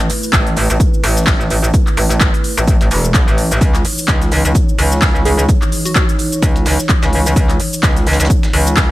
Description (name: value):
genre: bass house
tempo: 128 BPM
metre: 4/4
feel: swing 57% on 16ths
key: unclear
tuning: A4 = 440 Hz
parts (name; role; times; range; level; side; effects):
- dark analog pad; sustained chords; 0.0-8.9 s; E3 to C#5; -23 LUFS; equal; chorus, sidechain pumping
- metallic wobble bass; bass; 0.0-8.9 s; E1 to C#2; -14 LUFS; equal; chorus, overdrive, sidechain pumping
- big-room dance drum kit; drums; 0.0-8.9 s; cabasa, handclaps, hi-hat; -19 LUFS; left 1 dB; none
- dusty soul sampler-style drum kit; drums; 0.0-8.9 s; hi-hat, shaker, snare drum; -28 LUFS; right 2 dB; sidechain pumping on perc, high-pass filter on perc, sidechain pumping on hats, high-pass filter on hats, high-pass filter on snare
- electronic kick drum; drums; 0.3-8.9 s; none; -14 LUFS; equal; overdrive
- soft struck synth lead; melody; 5.3-6.0 s; F#4 to G#4; -23 LUFS; right 1 dB; chorus, tape echo
room: little or no reverb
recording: none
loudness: -11 LUFS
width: side -17 dB against mid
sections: 0.0-8.9 A section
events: none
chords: 0.0 Asus2; 3.6 C#madd9